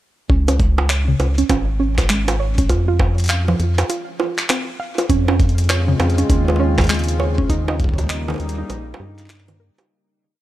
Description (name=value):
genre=IDM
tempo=100 BPM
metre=4/4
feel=swing 62% on 16ths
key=Db lydian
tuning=A4 = 439 Hz
part: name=warbly dusty pluck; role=arpeggios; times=0.3-9.9 s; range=Db3 to F5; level=-23 LUFS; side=right 2 dB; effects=chorus, digital delay
part: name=rubbery square bass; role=bass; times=0.3-9.7 s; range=Ab1 to G2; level=-19 LUFS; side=equal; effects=none
part: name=electronic kick drum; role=drums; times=0.3-8.1 s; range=none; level=-18 LUFS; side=equal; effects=none
part: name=jungle sampler-style drum kit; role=drums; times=0.5-9.9 s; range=bongos, handclaps, hi-hat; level=-22 LUFS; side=right 2 dB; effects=none
part: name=warbly tape-like pad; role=sustained chords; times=5.5-9.9 s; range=Db3 to F4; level=-25 LUFS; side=left 1 dB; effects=chorus, built-in reverb, vintage 12-bit sampler grit
room=digital ambience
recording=none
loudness=-16 LUFS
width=side -14 dB against mid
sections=0.3-9.9 groove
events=fade-out 6.7-9.9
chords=0.3 Db5; 2.7 F5; 5.1 Dbmaj7/F; 7.5 Eb7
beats=| 0.30 0.90 1.50 2.10 | 2.70 3.30 3.90 4.50 | 5.10 5.70 6.30 6.90 | 7.50 8.10 8.70 9.30